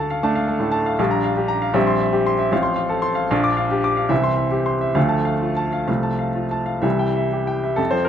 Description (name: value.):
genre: classical, romantic character piece for solo piano.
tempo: 62-83 BPM (dotted quarters).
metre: 6/8.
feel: rubato.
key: unclear.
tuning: A4 = 440 Hz.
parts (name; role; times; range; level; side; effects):
clear baby grand piano; solo; 0.0-8.1 s; A1 to D6; -18 LUFS; equal; none.
room: light reverb.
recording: none.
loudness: -18 LUFS.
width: side -9 dB against mid.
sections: 0.0-7.8 A section.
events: none.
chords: 0.0 Dm; 1.0 Gm7/Bb; 1.8 C7/Bb; 2.5 F/A; 3.3 Gm7/Bb; 4.1 C; 5.0 Dm; 5.9 F/C; 6.8 C.